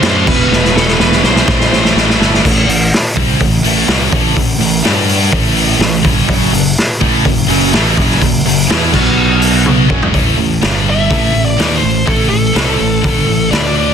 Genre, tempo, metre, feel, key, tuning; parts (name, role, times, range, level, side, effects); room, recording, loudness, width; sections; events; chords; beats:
hard rock; 125 BPM; 4/4; straight; A4 = 441 Hz
bluesy overdriven lead guitar; melody; 0.0-1.9, 10.9-13.9 s; A4 to E5; -17 LUFS; equal; distortion, slapback echo
distorted electric guitar; riff; 0.0-2.4, 6.3-10.1 s; E2 to E4; -19 LUFS; right 1 dB; overdrive
scooped high-gain guitar; riff; 0.0-13.9 s; E2 to G4; -17 LUFS; left 13 dB; distortion
sludgy distorted guitar; riff; 0.0-13.9 s; E2 to G4; -17 LUFS; right 13 dB; overdrive
fingered electric bass; bass; 0.0-13.9 s; E1 to G2; -17 LUFS; equal
raw garage drum kit; drums; 0.0-13.6 s; crash cymbal, hi-hat, kick drum, snare drum, toms; -13 LUFS; equal
light reverb; dense, heavily limited modern master; -9 LUFS; side -7 dB against mid
0.0-2.4 A section; 2.4-10.1 B section; 10.1-13.9 C section
drum fill 0.5-2.4, 9.7-10.1
0.3 E5; 1.5 Am; 4.8 G5; 5.3 A5; 6.3 F#5; 8.9 B5; 9.9 F#5; 10.1 A5; 10.6 G5; 11.1 Am
0.03 | 0.51 0.99 1.47 1.95 | 2.44 2.92 3.40 3.88 | 4.36 4.84 5.32 5.80 | 6.29 6.77 7.25 7.73 | 8.21 8.69 9.17 9.66 | 10.14 10.62 11.10 11.59 | 12.07 12.55 13.04 13.52